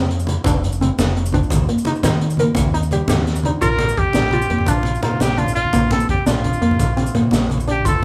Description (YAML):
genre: highlife guitar band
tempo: 114 BPM (dotted quarters)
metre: 12/8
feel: straight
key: Bb major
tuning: A4 = 440 Hz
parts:
  - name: nylon-string guitar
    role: accompaniment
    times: 0.0-7.8 s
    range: G3 to D4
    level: -27 LUFS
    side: equal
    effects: none
  - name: hollow square pluck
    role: arpeggios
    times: 0.0-8.0 s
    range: Bb3 to Bb4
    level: -26 LUFS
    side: equal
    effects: chorus, phaser
  - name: fingered electric bass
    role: bass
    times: 0.0-8.0 s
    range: F1 to Eb3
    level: -24 LUFS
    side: equal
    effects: none
  - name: congas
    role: percussion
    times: 0.0-7.9 s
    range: none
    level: -25 LUFS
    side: equal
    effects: none
  - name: crunchy breakbeat drum kit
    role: drums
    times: 0.1-7.9 s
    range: hi-hat, kick drum, snare drum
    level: -24 LUFS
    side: equal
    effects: none
  - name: maracas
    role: percussion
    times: 0.2-7.9 s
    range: none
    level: -38 LUFS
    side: equal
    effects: none
  - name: breathy trumpet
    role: melody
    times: 3.6-8.0 s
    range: F4 to Bb4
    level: -24 LUFS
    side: equal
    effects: none
room: light reverb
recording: band playing live in one room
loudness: -18 LUFS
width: mono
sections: 0.0-3.6 A section; 3.6-8.0 B section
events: none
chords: 0.0 F; 1.5 Eb; 3.6 Bb